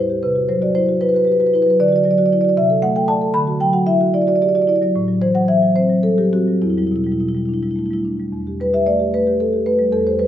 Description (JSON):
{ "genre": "classical, contemporary piece for solo marimba", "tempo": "75 BPM (dotted quarters)", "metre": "6/8", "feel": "rubato", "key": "E minor", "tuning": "A4 = 440 Hz", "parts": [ { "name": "marimba with soft mallets", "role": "solo", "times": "0.0-10.3 s", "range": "E2 to B5", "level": "-14 LUFS", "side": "equal", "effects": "none" } ], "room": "wet recital hall reverb, RT60 1.6 s", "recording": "minimal, uncompressed stereo recording", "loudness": "-14 LUFS", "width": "side -11 dB against mid", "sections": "0.0-8.3 A section; 8.3-10.3 A section", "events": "none", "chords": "0.2 Cmaj7#11; 1.8 Dadd9; 2.6 Csus2; 3.4 Dadd9; 4.9 Am6; 6.6 Em7" }